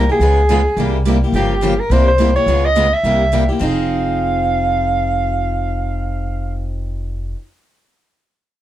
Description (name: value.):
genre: acoustic string swing (jazz manouche).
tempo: 212 BPM.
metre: 4/4.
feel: swing 58% on 8ths.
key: F minor.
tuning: A4 = 441 Hz.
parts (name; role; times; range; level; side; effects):
dark soprano saxophone; melody; 0.0-6.6 s; G4 to F5; -17 LUFS; right 1 dB; none.
picked steel-string acoustic guitar; accompaniment; 0.0-7.4 s; C3 to Ab4; -21 LUFS; left 3 dB; none.
picked steel-string acoustic guitar; accompaniment; 0.0-7.4 s; C3 to Ab4; -24 LUFS; right 5 dB; none.
upright bass; bass; 0.0-7.3 s; F1 to Db2; -18 LUFS; equal; none.
room: light reverb.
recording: dark, warm production.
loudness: -14 LUFS.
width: side -12 dB against mid.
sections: 0.0-3.6 A section; 3.6-5.9 B section.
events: none.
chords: 0.2 Db7; 0.8 C7b13; 1.3 Gm7b5; 1.9 C7; 2.5 Db9; 3.0 C7; 3.6 Fm7.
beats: | 0.20 0.49 0.77 1.05 | 1.33 1.62 1.90 2.18 | 2.46 2.75 3.03 3.31 | 3.60 3.88 4.16 4.45 | 4.73 5.01 5.29 5.58.